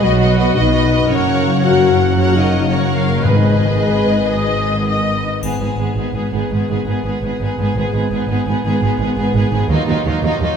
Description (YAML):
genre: cinematic, heroic adventure film score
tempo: 112 BPM (dotted quarters)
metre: 12/8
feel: straight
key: G# minor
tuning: A4 = 440 Hz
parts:
  - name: rich studio violin section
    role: melody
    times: 0.0-10.6 s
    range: E#4 to F#5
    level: -26 LUFS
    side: equal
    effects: none
  - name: warm symphonic violin section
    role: second line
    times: 0.0-10.6 s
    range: B3 to F#5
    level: -22 LUFS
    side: left 1 dB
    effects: none
  - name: rich symphonic viola section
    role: accompaniment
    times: 0.0-10.6 s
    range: F#3 to D#5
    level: -23 LUFS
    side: right 1 dB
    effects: none
  - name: dark French horn section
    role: sustained chords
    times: 0.0-4.9 s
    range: F#3 to F#4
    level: -18 LUFS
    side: left 3 dB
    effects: none
  - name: concert harp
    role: arpeggios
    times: 0.0-10.6 s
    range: F#2 to D#5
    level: -22 LUFS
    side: left 7 dB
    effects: none
  - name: clear symphonic double bass section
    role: bass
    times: 0.0-10.5 s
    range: F#1 to D#2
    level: -20 LUFS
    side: right 4 dB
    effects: none
  - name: dark studio cello section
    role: bass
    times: 0.0-10.5 s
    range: F#2 to D#3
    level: -22 LUFS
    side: right 3 dB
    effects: none
  - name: timpani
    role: percussion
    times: 3.2-3.8 s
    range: G#2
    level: -21 LUFS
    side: equal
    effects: none
  - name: triangle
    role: percussion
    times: 5.4-6.1 s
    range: none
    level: -37 LUFS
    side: left 4 dB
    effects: none
room: wet scoring stage reverb, RT60 1.7 s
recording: none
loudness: -14 LUFS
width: side -7 dB against mid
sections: 0.0-5.4 A section; 5.4-10.6 B section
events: none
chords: 0.0 B; 1.1 F#; 3.2 G#m; 9.7 D#madd9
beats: 0.03 0.56 | 1.09 1.63 2.17 2.70 | 3.25 3.79 4.34 4.89 | 5.43 5.97 6.51 7.04 | 7.58 8.12 8.65 9.18 | 9.71 10.24